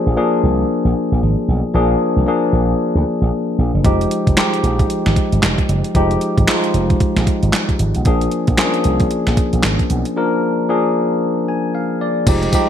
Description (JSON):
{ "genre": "R&B, new jack swing", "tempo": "114 BPM", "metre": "4/4", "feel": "swing 61% on 16ths", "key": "unclear", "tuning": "A4 = 440 Hz", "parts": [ { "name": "tine electric piano", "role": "accompaniment", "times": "0.0-12.7 s", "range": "F3 to Ab5", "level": "-17 LUFS", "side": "left 2 dB", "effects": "wide subtle chorus" }, { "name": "slap bass with an envelope filter", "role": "bass", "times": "0.1-12.5 s", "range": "F1 to D2", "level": "-17 LUFS", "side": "right 1 dB", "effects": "none" }, { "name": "crisp 8-bit digital drum machine", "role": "drums", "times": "3.8-12.7 s", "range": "crash cymbal, handclaps, hi-hat, kick drum, snare drum, tambourine", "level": "-17 LUFS", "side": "right 1 dB", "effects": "gated reverb" } ], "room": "moderate plate reverb, RT60 1.4 s, digital ambience", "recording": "bright 1980s-style digital production", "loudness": "-14 LUFS", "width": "side -9 dB against mid", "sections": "0.0-12.3 A section", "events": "tine electric piano fill 11.2-12.3", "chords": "0.0 Bb7; 3.8 Fm9; 8.1 Bb7" }